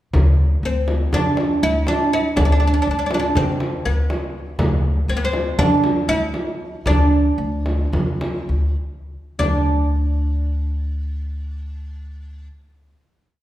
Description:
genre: Turkish makam ensemble.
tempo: 194-243 BPM (eighths).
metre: 9/8.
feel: straight.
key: unclear.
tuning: A4 = 436 Hz.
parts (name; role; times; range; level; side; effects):
upright bass; bass; 0.1-12.5 s; D2 to D3; -20 LUFS; equal; none.
frame drum; percussion; 0.1-9.7 s; none; -23 LUFS; equal; none.
oud; melody; 0.7-12.5 s; B3-30c to E4-30c; -20 LUFS; right 1 dB; none.
room: wet recital hall reverb, RT60 1.6 s.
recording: recorded in a church or concert hall.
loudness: -17 LUFS.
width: side -13 dB against mid.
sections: 0.1-9.4 A section; 9.4-12.2 final note.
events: slowing down 5.1-9.4.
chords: none.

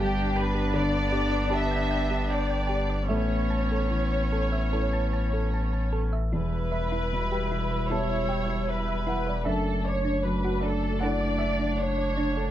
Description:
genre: neoclassical piano and strings.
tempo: 77 BPM.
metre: 4/4.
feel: rubato.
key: E dorian.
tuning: A4 = 440 Hz.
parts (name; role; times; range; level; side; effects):
muted studio violin section; melody; 0.0-12.5 s; G4 to E5; -30 LUFS; left 1 dB; none.
muted cello; second line; 0.0-12.5 s; G3 to B3; -34 LUFS; right 4 dB; none.
muted viola; accompaniment; 0.0-12.5 s; C#4 to E4; -36 LUFS; right 3 dB; none.
warm grand piano; accompaniment; 0.0-12.5 s; E2 to B5; -32 LUFS; equal; none.
thumb-piano-like synth pluck; arpeggios; 0.0-12.5 s; D4 to A5; -35 LUFS; right 2 dB; chorus.
pure sine sub bass; bass; 0.0-12.5 s; E1 to A1; -29 LUFS; left 1 dB; none.
room: light reverb.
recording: close, detailed microphones.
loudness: -24 LUFS.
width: side -12 dB against mid.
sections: 0.0-12.5 A section.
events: none.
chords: 0.0 G; 3.1 Aadd9; 6.3 Em; 9.5 Dadd9/F#.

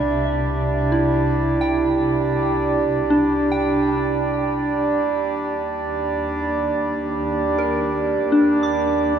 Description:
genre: ambient.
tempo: free time.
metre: none.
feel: none.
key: unclear.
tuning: A4 = 440 Hz.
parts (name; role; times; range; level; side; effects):
soft synth bell; arpeggios; 0.0-9.2 s; D4 to D6; -22 LUFS; equal; chorus, phaser, diffuse ambient delay.
rich chamber double bass section; bass; 0.0-9.2 s; C2 to Eb2; -27 LUFS; right 1 dB; none.
hand-pumped harmonium; drone; 0.0-9.2 s; G3 to D4; -21 LUFS; right 2 dB; none.
room: wet huge ambient reverb, RT60 7.6 s.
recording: small room ambience.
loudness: -18 LUFS.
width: side -8 dB against mid.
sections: 0.0-9.2 A section.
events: none.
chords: 0.0 C7; 5.1 Eb.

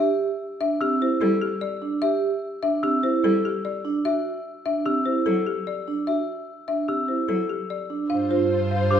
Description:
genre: classical, minimalist pattern music.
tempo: 148 BPM.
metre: 5/4.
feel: straight.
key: C lydian.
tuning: A4 = 441 Hz.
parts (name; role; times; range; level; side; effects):
folk marimba with medium hard mallets; melody; 0.0-9.0 s; G4 to F5; -26 LUFS; left 7 dB; none.
vibraphone with soft mallets; arpeggios; 0.0-9.0 s; C4 to G4; -25 LUFS; right 6 dB; none.
glockenspiel with rubber mallets; arpeggios; 0.8-9.0 s; D6 to E6; -31 LUFS; left 2 dB; none.
rich cello; accompaniment; 1.2-7.4 s; F#3 to G3; -30 LUFS; equal; none.
warm clarinet; second line; 8.1-9.0 s; C5; -27 LUFS; equal; none.
warm studio violin section; sustained chords; 8.1-9.0 s; F4 to C5; -27 LUFS; left 4 dB; none.
rich double bass; bass; 8.1-9.0 s; G2; -25 LUFS; right 2 dB; none.
room: wet recital hall reverb, RT60 1.4 s.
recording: recorded in a church or concert hall.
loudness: -22 LUFS.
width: side -8 dB against mid.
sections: 0.0-8.1 A section.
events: none.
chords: 0.0 D7sus4; 4.0 Cadd9; 8.1 G7sus4.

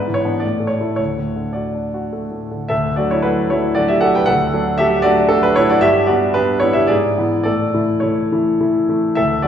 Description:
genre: classical, romantic character piece for solo piano.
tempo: 102-118 BPM.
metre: 3/4.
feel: rubato.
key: D major.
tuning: A4 = 440 Hz.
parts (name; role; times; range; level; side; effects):
bright concert grand piano; solo; 0.0-9.5 s; D2 to G5; -14 LUFS; equal; none.
room: wet recital hall reverb, RT60 1.4 s.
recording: heard from further back in the room.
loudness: -14 LUFS.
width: side -8 dB against mid.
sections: 0.0-2.7 A section; 2.7-9.5 A section.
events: none.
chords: 0.4 A; 1.0 D; 5.8 G; 6.9 E7/G#; 7.5 A.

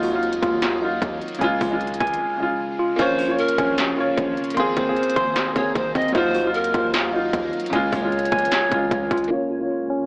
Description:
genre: hip hop, trap.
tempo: 152 BPM.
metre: 4/4.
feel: half-time.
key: Bb minor.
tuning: A4 = 439 Hz.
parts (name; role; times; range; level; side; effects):
dark grand piano; accompaniment; 0.0-10.1 s; Db3 to Db5; -24 LUFS; equal; low-pass filter.
granular cloud pad; sustained chords; 0.0-10.1 s; C3 to F5; -34 LUFS; equal; built-in reverb, low-pass filter.
mellow tine electric piano; arpeggios; 0.0-10.1 s; C4 to C6; -24 LUFS; equal; medium stereo tremolo, low-pass filter, analog delay.
hard-hitting 808-style bass; bass; 0.0-9.3 s; Ab1 to Eb2; -30 LUFS; equal; none.
industrial drum kit; drums; 0.0-9.3 s; hi-hat, kick drum, snare drum; -26 LUFS; equal; distortion, overdrive.
breathy pan flute; second line; 3.0-9.3 s; Bb4 to Eb5; -25 LUFS; equal; analog delay.
room: light reverb.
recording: dry, gritty hardware recording, AM radio sound.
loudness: -19 LUFS.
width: side -29 dB against mid.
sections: 0.0-9.3 A section.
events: drums muted 2.2-3.0.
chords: 0.0 Ebmadd9; 1.4 Db; 3.0 Bbm; 4.6 Abadd9; 6.1 Ebmadd9; 7.7 Db; 9.3 Bbm.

